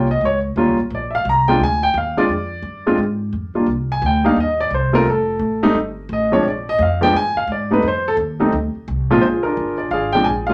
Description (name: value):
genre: jazz piano trio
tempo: 173 BPM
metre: 4/4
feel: swing 63% on 8ths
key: Bb mixolydian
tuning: A4 = 441 Hz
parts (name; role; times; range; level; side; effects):
- warm grand piano; melody; 0.0-10.5 s; Bb2 to Bb5; -19 LUFS; equal; none
- upright bass; bass; 0.0-10.5 s; F1 to Ab2; -25 LUFS; equal; none
room: wet club reverb, RT60 0.6 s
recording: none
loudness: -18 LUFS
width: mono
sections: 0.0-9.2 A section; 9.2-10.5 B section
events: grand piano solo 0.0-9.2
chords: 0.0 Eb7; 0.9 Bb7; 3.7 Cm; 5.1 F7; 6.4 Bb; 7.1 G5; 7.8 F7(no3); 9.2 Bb7